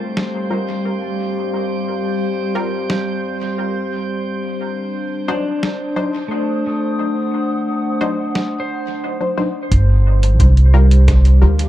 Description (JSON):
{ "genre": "ambient dub", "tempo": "88 BPM", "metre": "4/4", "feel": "straight", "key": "unclear", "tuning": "A4 = 440 Hz", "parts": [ { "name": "warbly tape-like pad", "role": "sustained chords", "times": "0.0-11.7 s", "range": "G3 to Eb6", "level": "-23 LUFS", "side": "left 1 dB", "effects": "chorus, built-in reverb" }, { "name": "pedal steel guitar", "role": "arpeggios", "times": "0.0-0.7, 5.3-9.8 s", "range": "A3 to C5", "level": "-26 LUFS", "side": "left 1 dB", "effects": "dub echo" }, { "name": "filtered dub chord stab", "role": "stabs", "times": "0.0-11.6 s", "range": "F#3 to C5", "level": "-26 LUFS", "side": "left 3 dB", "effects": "chorus, dub echo" }, { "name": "drifting glass-harmonics texture", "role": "texture", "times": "0.0-9.7 s", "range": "C4 to C5", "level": "-28 LUFS", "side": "right 2 dB", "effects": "chorus, built-in reverb" }, { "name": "lo-fi sampler-style drum kit", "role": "drums", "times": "0.2-11.7 s", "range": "hi-hat, snare drum", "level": "-25 LUFS", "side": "equal", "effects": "overdrive, dub echo" }, { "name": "upright bass", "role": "bass", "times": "9.7-11.7 s", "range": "G1 to D2", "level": "-10 LUFS", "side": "equal", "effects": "none" }, { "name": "electronic kick drum", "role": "drums", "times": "9.7-11.2 s", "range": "none", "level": "-17 LUFS", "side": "equal", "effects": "overdrive" } ], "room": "little or no reverb", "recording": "echo-heavy mix", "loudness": "-15 LUFS", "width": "side -14 dB against mid", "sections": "0.0-9.7 A section; 9.7-11.7 B section", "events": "none", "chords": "0.0 Gm7; 4.3 D7b9; 9.7 Gm7" }